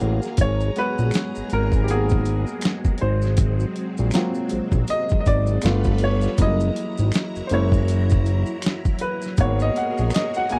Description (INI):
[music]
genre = R&B, neo-soul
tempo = 80 BPM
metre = 4/4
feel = swing 60% on 16ths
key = unclear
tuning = A4 = 441 Hz
[part]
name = clear baby grand piano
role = accompaniment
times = 0.0-10.6 s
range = D#3 to G#5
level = -28 LUFS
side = equal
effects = none
[part]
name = string machine, full ensemble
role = sustained chords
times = 0.0-10.6 s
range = F#3 to A#5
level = -32 LUFS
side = equal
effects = phaser, ensemble chorus
[part]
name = fat analog bass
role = bass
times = 0.0-10.6 s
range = F#1 to A#1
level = -23 LUFS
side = equal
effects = none
[part]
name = maracas and finger snaps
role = percussion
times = 0.0-10.6 s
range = none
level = -43 LUFS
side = equal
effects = none
[part]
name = boom bap sampler-style drum kit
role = drums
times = 0.3-10.6 s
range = hi-hat, kick drum, snare drum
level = -24 LUFS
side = equal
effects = overdrive
[sound]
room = little or no reverb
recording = dry, close 1970s-style studio recording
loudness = -21 LUFS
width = mono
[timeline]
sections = 0.4-10.6 A section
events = grand piano solo 0.4-10.6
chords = 0.4 G#m9; 3.0 G#13; 5.6 G9; 6.4 F#7; 9.4 G#m9